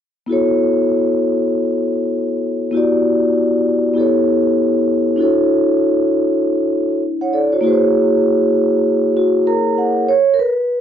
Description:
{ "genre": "hip hop", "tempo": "98 BPM", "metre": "4/4", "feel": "swing 62% on 16ths", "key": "A major", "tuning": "A4 = 435 Hz", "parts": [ { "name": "vibraphone with soft mallets", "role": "solo", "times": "0.3-10.8 s", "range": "A#3 to A#5", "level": "-14 LUFS", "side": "equal", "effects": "none" } ], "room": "light reverb", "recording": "cassette tape", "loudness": "-14 LUFS", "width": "side -9 dB against mid", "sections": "0.3-10.1 A section", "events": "vibraphone fill 9.2-10.1", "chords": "0.3 A6; 2.7 Em7; 4.0 A7; 5.2 Dmaj7; 7.6 F#7; 10.1 N.C.", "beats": "| 0.29 0.90 1.51 2.13 | 2.74 3.35 3.96 4.58 | 5.19 5.80 6.41 7.03 | 7.64 8.25 8.86 9.47 | 10.09 10.70" }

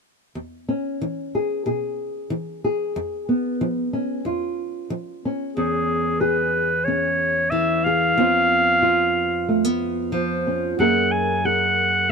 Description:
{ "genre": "folk", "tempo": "92 BPM", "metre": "4/4", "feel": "straight", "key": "unclear", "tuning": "A4 = 440 Hz", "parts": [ { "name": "nylon-string guitar", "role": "accompaniment", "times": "0.4-12.1 s", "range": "E2 to G#4", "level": "-22 LUFS", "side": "equal", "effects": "none" }, { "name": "bright clarinet", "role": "melody", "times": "5.6-12.1 s", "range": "G#4 to G#5", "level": "-19 LUFS", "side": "equal", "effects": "none" } ], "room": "little or no reverb", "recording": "close, detailed microphones", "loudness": "-19 LUFS", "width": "side -5 dB against mid", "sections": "0.3-5.6 A section; 5.6-12.1 B section", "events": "none", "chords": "0.3 E6; 2.9 C#7/E#; 5.6 E6; 8.2 C#7/E#; 10.8 F#add9", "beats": "| 0.33 0.99 1.64 2.29 | 2.95 3.60 4.25 4.91 | 5.56 6.21 6.87 7.52 | 8.17 8.83 9.48 10.13 | 10.78 11.44 12.09" }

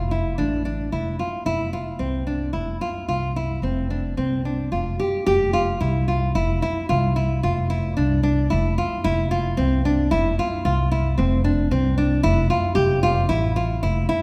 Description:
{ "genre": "contemporary instrumental, chamber music in an uneven meter", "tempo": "112 BPM", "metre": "7/4", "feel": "straight", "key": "F major", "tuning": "A4 = 440 Hz", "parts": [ { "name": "nylon-string guitar", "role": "arpeggios", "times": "0.0-14.2 s", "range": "C4 to G4", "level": "-25 LUFS", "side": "equal", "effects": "none" }, { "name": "upright bass", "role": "bass", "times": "0.0-14.1 s", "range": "F1 to C2", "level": "-25 LUFS", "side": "equal", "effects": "none" } ], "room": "wet scoring stage reverb, RT60 1.5 s", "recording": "recorded in a church or concert hall", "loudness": "-22 LUFS", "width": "mono", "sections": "0.0-5.3 A section; 5.3-14.2 A section", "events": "none", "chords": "0.0 Dsus2/F; 1.5 F5; 12.8 Dsus2/F (rootless)", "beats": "0.39 0.92 | 1.46 2.00 2.54 3.08 3.63 4.17 4.72 | 5.27 5.82 6.36 6.90 7.43 7.97 8.51 | 9.05 9.58 10.12 10.65 11.18 11.71 12.24 | 12.77 13.29 13.82" }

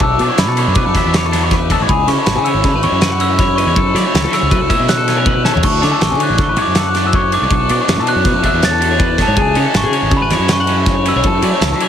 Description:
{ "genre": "math rock and midwest emo", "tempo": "160 BPM", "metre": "5/4", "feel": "straight", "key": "unclear", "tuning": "A4 = 439 Hz", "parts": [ { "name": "glockenspiel with rubber mallets", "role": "melody", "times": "0.0-11.9 s", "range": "G#5 to A6", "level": "-18 LUFS", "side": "right 2 dB", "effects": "digital delay" }, { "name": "electric guitar through a small old amp", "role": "arpeggios", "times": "0.0-11.9 s", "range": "G#4 to F#5", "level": "-20 LUFS", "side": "left 6 dB", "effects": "phaser" }, { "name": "growling fingered electric bass", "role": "bass", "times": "0.0-11.9 s", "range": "G#1 to F#3", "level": "-18 LUFS", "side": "equal", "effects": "overdrive" }, { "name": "loose indie drum kit", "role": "drums", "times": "0.0-11.9 s", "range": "crash cymbal, kick drum, ride cymbal, snare drum, toms", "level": "-16 LUFS", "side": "left 1 dB", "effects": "none" }, { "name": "cranked stack guitar", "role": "riff", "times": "0.2-11.9 s", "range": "B2 to D4", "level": "-23 LUFS", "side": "right 3 dB", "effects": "overdrive" } ], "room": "light reverb", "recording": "heavily compressed radio sound", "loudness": "-11 LUFS", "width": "side -9 dB against mid", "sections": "0.0-11.9 A section", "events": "drum fill 5.5", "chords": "0.0 Bm11; 1.9 C#m7; 3.8 F#m7; 5.6 Dmaj7; 7.5 Bm11; 9.4 C#m7; 11.3 F#m", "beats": "| 0.01 0.39 0.76 1.14 1.51 | 1.89 2.27 2.64 3.02 3.39 | 3.77 4.14 4.52 4.89 5.27 | 5.64 6.01 6.39 6.76 7.14 | 7.51 7.89 8.26 8.63 9.01 | 9.38 9.76 10.13 10.51 10.88 | 11.25 11.63" }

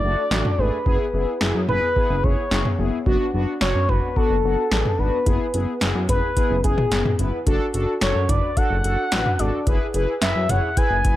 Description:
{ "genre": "synth-pop", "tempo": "109 BPM", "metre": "4/4", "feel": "straight", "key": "unclear", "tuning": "A4 = 440 Hz", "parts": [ { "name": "expressive synth lead", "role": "melody", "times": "0.0-11.2 s", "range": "G#4 to G#5", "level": "-24 LUFS", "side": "left 1 dB", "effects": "chorus, phaser, tape echo" }, { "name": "analog synth brass", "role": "accompaniment", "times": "0.0-11.2 s", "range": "A3 to C#5", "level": "-26 LUFS", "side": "left 2 dB", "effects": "chorus" }, { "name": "chorused synth bass", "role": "bass", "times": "0.0-11.2 s", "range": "F#1 to F#2", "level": "-23 LUFS", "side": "equal", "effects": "none" }, { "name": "electro analog drum machine", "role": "drums", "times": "0.3-11.2 s", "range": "hi-hat, kick drum, snare drum, toms", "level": "-22 LUFS", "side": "equal", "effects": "none" } ], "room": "light reverb", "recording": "none", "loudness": "-18 LUFS", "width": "side -14 dB against mid", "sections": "0.0-11.2 A section", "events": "none", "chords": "0.0 D/F#; 0.9 E/F#; 3.1 Bm/F#; 5.3 E/F#; 7.5 D/F#; 9.7 E/F#", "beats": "0.31 | 0.86 1.41 1.96 2.51 | 3.06 3.61 4.16 4.71 | 5.26 5.82 6.37 6.92 | 7.47 8.02 8.57 9.12 | 9.67 10.22 10.77" }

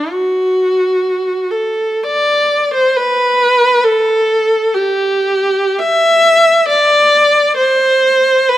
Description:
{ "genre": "classical, free, expressive piece for unaccompanied viola", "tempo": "64 BPM", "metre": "3/4", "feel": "uneven beats, rubato", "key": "unclear", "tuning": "A4 = 441 Hz", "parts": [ { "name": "warm viola", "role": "solo", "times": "0.0-8.6 s", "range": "F#4 to E5", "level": "-10 LUFS", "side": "equal", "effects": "none" } ], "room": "moderate recital hall reverb, RT60 1.7 s", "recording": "close, detailed microphones", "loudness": "-10 LUFS", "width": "side -13 dB against mid", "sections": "0.0-8.6 A section", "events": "none", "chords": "none", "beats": "| 0.11 0.99 2.03 | 2.96 3.84 4.75 | 5.79 6.69 7.58 | 8.49" }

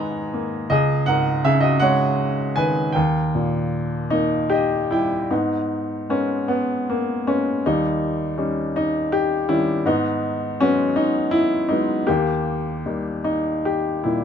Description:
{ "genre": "classical, lyrical solo piano", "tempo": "50-55 BPM (dotted quarters)", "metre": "6/8", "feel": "rubato", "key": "G# minor", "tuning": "A4 = 440 Hz", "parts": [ { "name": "clear baby grand piano", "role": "solo", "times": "0.0-14.2 s", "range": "C#2 to B5", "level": "-19 LUFS", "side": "left 1 dB", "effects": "none" } ], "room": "light reverb", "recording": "close, detailed microphones", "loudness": "-19 LUFS", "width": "side -8 dB against mid", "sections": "0.0-5.3 A section; 5.3-14.2 B section", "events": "grand piano fill 4.1-5.3", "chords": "0.0 G#sus2; 0.7 C#sus2; 3.0 D#; 5.3 G#madd9; 7.6 D#7; 9.9 G#m7; 12.1 D#", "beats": "| 0.71 1.82 | 2.96 4.12 | 5.30 6.49 | 7.65 8.75 | 9.86 10.96 | 12.08 13.25" }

